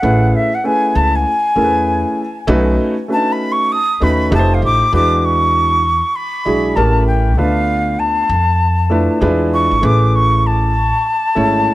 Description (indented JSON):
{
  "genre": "hip hop, jazz-hop",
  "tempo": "98 BPM",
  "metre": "4/4",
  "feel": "swing 63% on 16ths",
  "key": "A major",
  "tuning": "A4 = 444 Hz",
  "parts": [
    { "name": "mellow jazz flute", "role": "melody", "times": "0.0-11.7 s", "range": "E5 to D#6", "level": "-16 LUFS", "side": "left 1 dB", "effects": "tape echo" },
    { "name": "dark concert grand piano", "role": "accompaniment", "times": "0.0-11.7 s", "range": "G#3 to C#5", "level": "-17 LUFS", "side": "right 1 dB", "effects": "plate reverb" },
    { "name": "upright bass", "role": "bass", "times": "0.0-11.6 s", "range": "F1 to F2", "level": "-16 LUFS", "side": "equal", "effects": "none" }
  ],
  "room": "moderate studio reverb, RT60 0.5 s",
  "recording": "none",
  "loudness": "-12 LUFS",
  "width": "side -16 dB against mid",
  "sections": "0.0-4.9 A section; 4.9-11.7 B section",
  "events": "flute solo 0.0-4.9",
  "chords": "0.0 Amaj9; 2.5 B7; 4.3 F9; 4.9 E7; 6.8 A7b9; 7.4 Dm6; 9.2 E7b9; 9.8 Amaj9",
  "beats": "| 0.04 0.65 1.26 1.87 | 2.48 3.10 3.71 4.32 | 4.93 5.54 6.16 6.77 | 7.38 7.99 8.61 9.22 | 9.83 10.44 11.05 11.67"
}